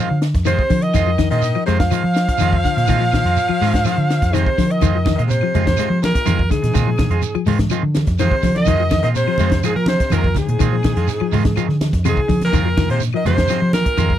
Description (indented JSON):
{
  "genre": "afrobeat",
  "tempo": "124 BPM",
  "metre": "4/4",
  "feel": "straight",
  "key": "F dorian",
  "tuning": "A4 = 445 Hz",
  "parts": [
    { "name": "edgy alto saxophone", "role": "melody", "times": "0.0-14.2 s", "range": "Ab4 to F5", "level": "-22 LUFS", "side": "right 1 dB", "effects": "none" },
    { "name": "clear baritone saxophone", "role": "second line", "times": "0.0-14.2 s", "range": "Ab2 to F3", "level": "-28 LUFS", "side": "left 14 dB", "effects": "none" },
    { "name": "clear trumpet", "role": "second line", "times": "0.0-14.2 s", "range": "Ab4 to F5", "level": "-29 LUFS", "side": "right 6 dB", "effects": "none" },
    { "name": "semi-hollow electric guitar", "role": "arpeggios", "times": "0.0-14.2 s", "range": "C3 to Ab3", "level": "-23 LUFS", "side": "left 12 dB", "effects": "phaser" },
    { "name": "clean electric guitar", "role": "stabs", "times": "0.0-14.1 s", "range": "Eb3 to F4", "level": "-26 LUFS", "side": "right 10 dB", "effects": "none" },
    { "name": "vintage muted fingered electric bass", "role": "bass", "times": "0.1-14.2 s", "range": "F2 to F3", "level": "-18 LUFS", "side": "equal", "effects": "none" },
    { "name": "compact cocktail drum kit", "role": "drums", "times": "0.2-14.2 s", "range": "hi-hat, kick drum, snare drum", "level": "-21 LUFS", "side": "equal", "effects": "none" },
    { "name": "shekere", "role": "percussion", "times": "0.2-14.1 s", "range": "none", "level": "-27 LUFS", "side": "right 9 dB", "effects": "none" },
    { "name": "claves", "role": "percussion", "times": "0.5-14.1 s", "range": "none", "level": "-36 LUFS", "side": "left 23 dB", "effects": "none" },
    { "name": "congas", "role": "percussion", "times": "4.8-14.1 s", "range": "none", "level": "-25 LUFS", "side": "right 4 dB", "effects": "none" }
  ],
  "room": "little or no reverb",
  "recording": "dry, close 1970s-style studio recording",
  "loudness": "-14 LUFS",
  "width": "side -11 dB against mid",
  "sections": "0.0-14.2 A section",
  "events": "none",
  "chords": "0.0 Fm7"
}